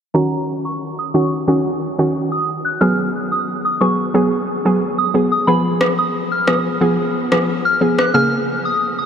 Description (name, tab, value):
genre	dancehall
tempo	90 BPM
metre	4/4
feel	straight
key	Eb minor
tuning	A4 = 440 Hz
part	soft synth bell	melody	0.1-9.1 s	Bb5 to Gb6	-20 LUFS	equal	chorus, phaser, low-pass filter, diffuse ambient delay
part	hollow square pluck	accompaniment	0.1-9.1 s	Db3 to Ab4	-17 LUFS	equal	chorus, low-pass filter
part	electronic rim click	drums	5.8-8.1 s	none	-21 LUFS	equal	overdrive
room	wet huge ambient reverb, RT60 7.7 s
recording	dreamy mix soaked in reverb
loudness	-15 LUFS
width	side -8 dB against mid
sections	0.1-9.1 A section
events	filter sweep 0.1-9.1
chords	0.1 Ebm7; 2.8 Abm7; 5.5 Fdim; 8.1 Bbm7